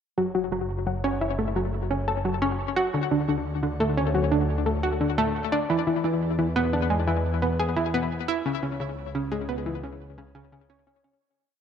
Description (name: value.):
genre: ambient, sequencer-driven space music.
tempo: 87 BPM.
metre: 4/4.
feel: straight.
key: F# minor.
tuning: A4 = 443 Hz.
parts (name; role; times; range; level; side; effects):
analog pluck; riff; 0.2-11.2 s; C#3 to A4; -24 LUFS; equal; chorus, cassette tape, ping-pong delay, shimmer reverb.
fat analog bass; bass; 0.2-11.2 s; F#1 to C#2; -29 LUFS; equal; none.
room: wet spring reverb, RT60 2.9 s.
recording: echo-heavy mix.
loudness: -23 LUFS.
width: side -8 dB against mid.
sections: 0.2-11.2 A section.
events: fade-out 7.5-11.2.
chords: 0.2 F#m7; 2.9 Dmaj7; 5.7 E7; 8.5 C#m.